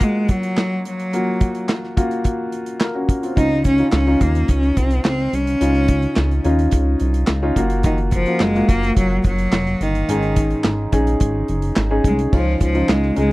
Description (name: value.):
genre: piano-driven pop.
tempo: 107 BPM.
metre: 4/4.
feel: straight.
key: Db major.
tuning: A4 = 440 Hz.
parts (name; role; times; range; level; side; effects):
clear cello; melody; 0.0-13.3 s; Eb3 to Eb4; -20 LUFS; equal; none.
clear baby grand piano; accompaniment; 0.0-13.3 s; Ab2 to Bb4; -22 LUFS; left 1 dB; none.
modern studio drum kit; drums; 0.0-13.3 s; crash cymbal, handclaps, hi-hat, kick drum, snare drum; -18 LUFS; equal; none.
chorused synth bass; bass; 3.4-13.3 s; F1 to Eb2; -20 LUFS; equal; none.
room: little or no reverb.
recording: dry, close 1970s-style studio recording.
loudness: -16 LUFS.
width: side -20 dB against mid.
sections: 0.0-12.3 A section.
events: none.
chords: 0.0 Gbmaj7; 3.4 Dbadd9; 7.6 Gbmaj7; 10.1 Absus4; 12.3 Dbadd9.